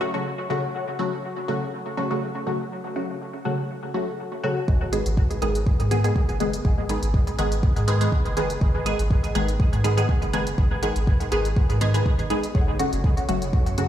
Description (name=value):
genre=dub techno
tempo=122 BPM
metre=4/4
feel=swing 54% on 16ths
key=G# phrygian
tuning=A4 = 440 Hz
part: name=filtered dub chord stab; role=stabs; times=0.0-13.9 s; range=C#3 to G#4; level=-25 LUFS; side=equal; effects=chorus, phaser, sidechain pumping, dub echo
part: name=filtered dub chord stab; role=riff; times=0.5-0.9, 4.4-8.8, 12.3-12.7 s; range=A4 to G#5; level=-39 LUFS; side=left 3 dB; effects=none
part: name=soft dub sub bass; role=bass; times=4.7-13.9 s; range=F#1 to G#2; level=-25 LUFS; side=equal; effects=sidechain pumping
part: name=electronic kick drum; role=drums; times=4.7-13.6 s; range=none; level=-21 LUFS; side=equal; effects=small room ambience
part: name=electronic hi-hat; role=drums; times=4.9-13.9 s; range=none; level=-37 LUFS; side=equal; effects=small room ambience
part: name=wind-like tuned noise texture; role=texture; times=13.0-13.9 s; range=C#5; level=-38 LUFS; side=right 5 dB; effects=built-in reverb, sidechain pumping
room=light reverb, digital ambience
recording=played on a big sound system in a bare room, stone room reverb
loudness=-21 LUFS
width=side -11 dB against mid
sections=0.0-4.7 A section; 4.7-13.9 B section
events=none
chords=0.0 F#m; 4.7 G#m; 12.6 F#m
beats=0.26 | 0.75 1.24 1.73 2.22 | 2.71 3.21 3.70 4.19 | 4.68 5.17 5.66 6.16 | 6.65 7.14 7.63 8.12 | 8.62 9.11 9.60 10.09 | 10.58 11.07 11.57 12.06 | 12.55 13.04 13.53